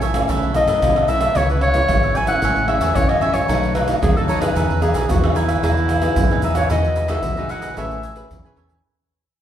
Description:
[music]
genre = samba and choro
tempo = 112 BPM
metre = 4/4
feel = straight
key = E major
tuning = A4 = 440 Hz
[part]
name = cavaquinho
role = accompaniment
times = 0.0-8.8 s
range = D#4 to G#5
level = -27 LUFS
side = right 3 dB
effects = none
[part]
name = nylon-string guitar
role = accompaniment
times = 0.0-8.8 s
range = F#2 to B4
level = -26 LUFS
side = left 2 dB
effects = none
[part]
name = modern bright fingered electric bass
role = bass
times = 0.0-8.8 s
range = G#1 to F#2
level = -22 LUFS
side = equal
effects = none
[part]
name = egg shaker, surdo, pandeiro and tamborim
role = percussion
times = 0.0-8.8 s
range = none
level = -21 LUFS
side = right 1 dB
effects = none
[part]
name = warm clarinet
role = melody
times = 0.6-8.5 s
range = E4 to G#5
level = -21 LUFS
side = left 1 dB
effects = none
[sound]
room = wet recital hall reverb, RT60 1.5 s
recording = recorded in a church or concert hall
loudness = -16 LUFS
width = side -10 dB against mid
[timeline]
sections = 0.0-6.7 A section; 6.7-8.8 B section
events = fade-out 6.7-8.8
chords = 0.3 B9sus4; 1.4 C#m7; 2.4 Amaj7; 3.5 B7; 4.6 Emaj7; 6.7 Emaj9; 7.8 Amaj9

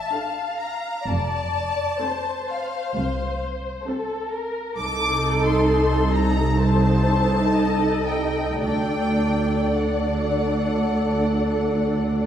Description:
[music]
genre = classical, slow romantic movement for string orchestra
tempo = 52-67 BPM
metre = 4/4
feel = rubato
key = unclear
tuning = A4 = 440 Hz
[part]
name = rich symphonic violin section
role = melody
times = 0.0-12.3 s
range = F5 to D6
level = -28 LUFS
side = left 4 dB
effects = none
[part]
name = dark symphonic violin section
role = second line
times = 0.0-12.3 s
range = A4 to F5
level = -28 LUFS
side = left 2 dB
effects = none
[part]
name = warm symphonic viola section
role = accompaniment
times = 0.1-12.3 s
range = C4 to A4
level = -25 LUFS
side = equal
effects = none
[part]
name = dark symphonic cello section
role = bass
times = 1.1-12.3 s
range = C2 to F2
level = -26 LUFS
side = right 2 dB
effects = none
[part]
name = rich symphonic double bass section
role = bass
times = 1.1-12.3 s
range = F1 to D2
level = -25 LUFS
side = right 2 dB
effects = none
[sound]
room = wet recital hall reverb, RT60 1.8 s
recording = heard from further back in the room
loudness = -20 LUFS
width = side -9 dB against mid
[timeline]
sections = 0.0-12.3 A section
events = none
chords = 0.0 Dm; 1.1 F; 4.8 Adim/C; 8.6 D

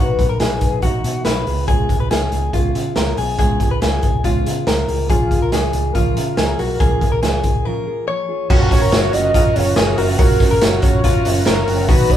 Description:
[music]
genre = jangly indie pop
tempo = 141 BPM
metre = 4/4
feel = straight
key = F# major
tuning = A4 = 440 Hz
[part]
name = warm velvety synth lead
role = melody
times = 0.0-0.8, 5.1-12.2 s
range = E#4 to D#5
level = -21 LUFS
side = left 1 dB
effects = chorus
[part]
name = fingerpicked steel-string acoustic guitar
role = accompaniment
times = 0.0-12.2 s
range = B2 to A#4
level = -25 LUFS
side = right 6 dB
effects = none
[part]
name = direct-recorded clean electric guitar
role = arpeggios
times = 0.0-12.2 s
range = E#4 to C#5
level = -22 LUFS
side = left 4 dB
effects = none
[part]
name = vintage muted fingered electric bass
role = bass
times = 0.0-12.1 s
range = F#1 to C#3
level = -22 LUFS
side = right 1 dB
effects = none
[part]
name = raw garage drum kit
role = drums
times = 0.2-12.2 s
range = crash cymbal, hi-hat, kick drum, snare drum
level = -17 LUFS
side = equal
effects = none
[part]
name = combo organ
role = accompaniment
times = 8.5-12.2 s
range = B3 to A#4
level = -28 LUFS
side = right 1 dB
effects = none
[part]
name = group handclap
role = percussion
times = 8.9-11.6 s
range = none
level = -32 LUFS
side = right 1 dB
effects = none
[sound]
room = moderate studio reverb, RT60 0.5 s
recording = band playing live in one room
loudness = -14 LUFS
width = side -10 dB against mid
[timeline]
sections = 0.0-8.5 A section; 8.5-12.2 B section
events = break 7.7-8.5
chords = 0.0 Bmaj7; 1.5 C#7; 4.9 A#m7; 8.5 F#maj7

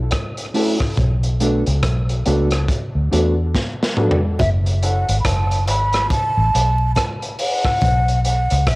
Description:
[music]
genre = dub reggae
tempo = 70 BPM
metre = 4/4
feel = swing 59% on 16ths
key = F# minor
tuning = A4 = 436 Hz
[part]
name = vintage muted fingered electric bass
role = bass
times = 0.0-8.8 s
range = F#1 to E2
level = -18 LUFS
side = equal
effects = none
[part]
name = crunchy breakbeat drum kit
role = drums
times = 0.1-8.8 s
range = hi-hat, kick drum, rim click, snare drum, toms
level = -21 LUFS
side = equal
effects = cassette tape
[part]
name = mellow electric guitar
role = accompaniment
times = 0.5-8.5 s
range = A3 to F#4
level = -25 LUFS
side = right 3 dB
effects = high-pass filter, cassette tape, dub echo
[part]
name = dark upright piano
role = stabs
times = 0.5-8.5 s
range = B3 to A4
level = -26 LUFS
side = left 3 dB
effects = high-pass filter, cassette tape, dub echo
[part]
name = breathy mellow concert flute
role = melody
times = 4.4-8.8 s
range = E5 to B5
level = -20 LUFS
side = equal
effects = cassette tape, dub echo
[part]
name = bongos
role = percussion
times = 4.4-8.1 s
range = none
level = -30 LUFS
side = right 2 dB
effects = high-pass filter on perc, dub echo
[sound]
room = little or no reverb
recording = home recording on cassette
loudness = -16 LUFS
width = side -21 dB against mid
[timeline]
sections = 0.0-4.4 A section; 4.4-8.8 A section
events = break 0.0-4.4; filter sweep 1.0-8.8; drum fill 3.5-4.4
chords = 0.0 F#m7; 1.0 Bm7; 4.4 F#m7; 7.8 Bm7

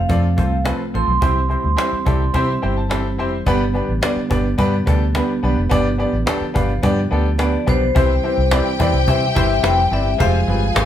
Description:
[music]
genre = uptempo 1960s-style soul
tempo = 107 BPM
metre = 4/4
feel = straight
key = C major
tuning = A4 = 440 Hz
[part]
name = vibraphone with medium hard mallets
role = melody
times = 0.0-2.6, 7.4-10.9 s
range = C5 to C6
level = -21 LUFS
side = left 2 dB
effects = none
[part]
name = percussive tonewheel organ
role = sustained chords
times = 0.0-10.9 s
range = D3 to F4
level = -26 LUFS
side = right 2 dB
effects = slow rotary speaker, chorus vibrato
[part]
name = vintage muted fingered electric bass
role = bass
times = 0.0-10.9 s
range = F1 to C3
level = -19 LUFS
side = equal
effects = none
[part]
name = clear grand piano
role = accompaniment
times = 0.1-10.9 s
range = B3 to C6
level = -21 LUFS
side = equal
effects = none
[part]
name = cajon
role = drums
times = 0.1-10.9 s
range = none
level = -22 LUFS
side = equal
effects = none
[part]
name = warm studio string section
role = second line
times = 8.0-10.9 s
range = G4 to Ab5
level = -24 LUFS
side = left 2 dB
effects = none
[sound]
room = moderate studio reverb, RT60 0.8 s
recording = band playing live in one room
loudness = -15 LUFS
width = side -10 dB against mid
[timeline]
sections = 0.0-8.0 A section; 8.0-10.9 B section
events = grand piano fill 1.8-3.5, 6.3-8.0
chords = 0.0 F; 1.2 C; 3.5 G; 8.0 Cmaj7; 10.2 Fmadd9

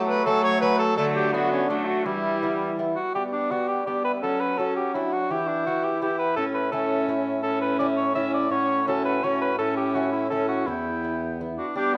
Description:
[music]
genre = classical, renaissance-style consort dance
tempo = 167 BPM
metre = 3/4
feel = straight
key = E dorian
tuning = A4 = 440 Hz
[part]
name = mellow cor anglais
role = second line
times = 0.0-12.0 s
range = F#3 to E5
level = -29 LUFS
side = equal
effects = none
[part]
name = lute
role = accompaniment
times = 0.0-12.0 s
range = E2 to G4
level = -34 LUFS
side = equal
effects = none
[part]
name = rich viola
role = accompaniment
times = 0.0-12.0 s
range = F#3 to E4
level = -32 LUFS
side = equal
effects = none
[part]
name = warm bassoon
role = bass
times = 0.0-12.0 s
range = E2 to G3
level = -32 LUFS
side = equal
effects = none
[part]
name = warm cornet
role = melody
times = 0.1-12.0 s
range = C#4 to G5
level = -32 LUFS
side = equal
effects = none
[sound]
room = moderate recital hall reverb, RT60 1.2 s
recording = dark, warm production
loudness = -25 LUFS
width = mono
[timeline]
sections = 0.0-3.1 A section; 3.1-11.8 B section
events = none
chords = 0.0 F#m; 1.0 D; 2.1 Em; 3.1 G; 4.2 F#m; 5.3 Em; 6.4 A; 8.5 F#m/A; 9.6 A; 10.7 Em

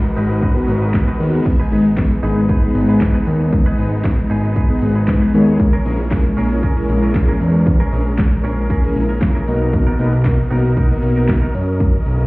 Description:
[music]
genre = dance-pop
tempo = 116 BPM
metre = 4/4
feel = straight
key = G# minor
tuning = A4 = 445 Hz
[part]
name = supersaw chords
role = sustained chords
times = 0.0-12.3 s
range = B2 to D#5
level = -23 LUFS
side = equal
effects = sidechain pumping
[part]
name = direct-recorded clean electric guitar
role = riff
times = 0.0-11.7 s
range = B3 to B4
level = -30 LUFS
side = right 2 dB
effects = wide subtle chorus
[part]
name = fat analog bass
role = bass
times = 0.0-12.3 s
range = G#1 to F#2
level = -17 LUFS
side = equal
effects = sidechain pumping
[part]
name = house drum kit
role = drums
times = 0.0-12.3 s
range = crash cymbal, handclaps, hi-hat, kick drum, shaker, snare drum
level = -16 LUFS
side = equal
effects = none
[part]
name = big bright polysynth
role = accompaniment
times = 0.6-11.4 s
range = G#3 to C#5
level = -19 LUFS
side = left 1 dB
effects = chorus, sidechain pumping
[part]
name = tambourine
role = percussion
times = 0.9-11.4 s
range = none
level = -60 LUFS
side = left 4 dB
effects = none
[sound]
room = little or no reverb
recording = heard muffled through a wall, stone room reverb, EQ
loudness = -13 LUFS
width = side -22 dB against mid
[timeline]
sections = 0.0-1.5 A section; 1.5-12.3 A section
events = none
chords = 0.0 G#m7; 1.5 G#m; 5.6 A#m7b5; 9.5 Bmaj7

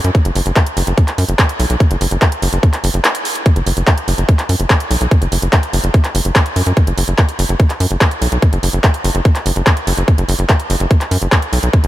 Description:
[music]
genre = psychedelic trance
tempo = 145 BPM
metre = 4/4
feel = straight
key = unclear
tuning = A4 = 440 Hz
[part]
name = tight sequencer bass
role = bass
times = 0.0-11.9 s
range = F#1 to F#2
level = -15 LUFS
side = equal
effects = none
[part]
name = drum and bass drum kit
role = drums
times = 0.0-11.9 s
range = handclaps, hi-hat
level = -18 LUFS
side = equal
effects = overdrive
[part]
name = electronic kick drum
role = drums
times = 0.1-11.8 s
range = none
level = -11 LUFS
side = equal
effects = overdrive
[sound]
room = light reverb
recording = none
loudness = -12 LUFS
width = side -15 dB against mid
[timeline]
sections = 0.0-11.9 A section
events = none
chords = none

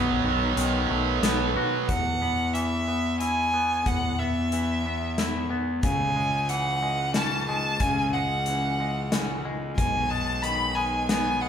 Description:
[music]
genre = post-rock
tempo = 91 BPM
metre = 3/4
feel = straight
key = E major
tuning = A4 = 440 Hz
[part]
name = deep dark ambient pad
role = sustained chords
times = 0.0-1.9, 9.8-11.5 s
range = none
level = barely audible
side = none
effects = none
[part]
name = twangy electric guitar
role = arpeggios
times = 0.0-11.5 s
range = E2 to F#4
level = -29 LUFS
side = left 2 dB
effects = none
[part]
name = tight distorted guitar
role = riff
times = 0.0-1.9 s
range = B2 to B3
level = -26 LUFS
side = right 8 dB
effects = distortion
[part]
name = fuzz fingered electric bass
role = bass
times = 0.0-11.5 s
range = B1 to B2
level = -30 LUFS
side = left 1 dB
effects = overdrive
[part]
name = big rock drum kit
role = drums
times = 0.6-11.2 s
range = hi-hat, kick drum, snare drum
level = -30 LUFS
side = left 1 dB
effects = none
[part]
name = clear violin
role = melody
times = 1.9-11.5 s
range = E5 to B5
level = -27 LUFS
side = right 1 dB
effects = none
[sound]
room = wet large studio reverb, RT60 1.3 s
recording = band playing live in one room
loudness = -23 LUFS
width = side -8 dB against mid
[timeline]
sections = 0.0-1.9 A section; 1.9-11.5 B section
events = none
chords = 0.0 B7; 1.9 Esus2; 5.8 C#m; 9.8 G#m7/B

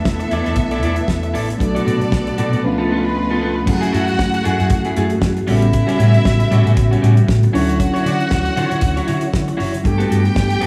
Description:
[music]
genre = disco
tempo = 116 BPM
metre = 4/4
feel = swing 56% on 16ths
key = F# phrygian from 3.7 s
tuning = A4 = 442 Hz
[part]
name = clear studio string section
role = second line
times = 0.0-10.7 s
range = G#3 to G5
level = -26 LUFS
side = equal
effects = none
[part]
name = tine electric piano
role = accompaniment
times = 0.0-10.7 s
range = E3 to A4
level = -25 LUFS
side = equal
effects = none
[part]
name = percussive tonewheel organ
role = sustained chords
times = 0.0-10.7 s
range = C#2 to C#5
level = -26 LUFS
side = equal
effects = chorus vibrato, slow rotary speaker
[part]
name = electric guitar at the edge of break-up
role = accompaniment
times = 0.1-10.7 s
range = G3 to D5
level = -26 LUFS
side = equal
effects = spring reverb
[part]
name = hollow-body short-scale fingered electric bass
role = bass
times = 0.1-10.7 s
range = E1 to D3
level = -20 LUFS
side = equal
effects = none
[part]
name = damped 70s drum kit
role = drums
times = 0.1-10.7 s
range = crash cymbal, hi-hat, kick drum, snare drum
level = -24 LUFS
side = equal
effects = none
[sound]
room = light reverb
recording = studio reverb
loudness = -16 LUFS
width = mono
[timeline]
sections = 0.0-3.7 A section; 3.7-10.7 B section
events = none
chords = 0.0 E7sus4; 1.6 Bm7; 2.6 C#7b9b13; 3.7 F#m9; 5.5 A13; 7.5 Dmaj9; 9.8 Gmaj9

